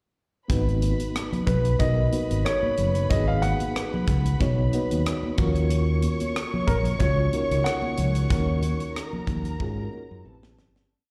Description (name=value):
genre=lush 1970s-style soul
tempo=92 BPM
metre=4/4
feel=swing 54% on 16ths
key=G# dorian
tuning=A4 = 440 Hz
part: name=dark studio string section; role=second line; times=0.5-10.9 s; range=A4 to C#6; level=-37 LUFS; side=equal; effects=slapback echo
part: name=reed electric piano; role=accompaniment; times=0.5-10.9 s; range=B3 to C#5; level=-33 LUFS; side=equal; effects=fast tremolo, slapback echo
part: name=fingered electric bass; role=bass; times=0.5-10.9 s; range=F#1 to G#2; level=-26 LUFS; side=equal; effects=none
part: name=tight funk drum kit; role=drums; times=0.5-10.9 s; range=hi-hat, kick drum, rim click, snare drum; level=-30 LUFS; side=equal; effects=none
part: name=congas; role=percussion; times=0.8-10.7 s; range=none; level=-35 LUFS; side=equal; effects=none
part: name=warm concert grand piano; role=melody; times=1.5-10.2 s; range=A#4 to F#5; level=-30 LUFS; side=equal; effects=slapback echo
room=small room ambience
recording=live gig heard through the venue's PA, recital hall reverb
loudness=-24 LUFS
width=mono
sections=0.5-10.9 verse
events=fade-out 8.3-10.9; drum fill 9.6-10.9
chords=0.5 G#m9; 5.4 D#m7; 10.3 Am9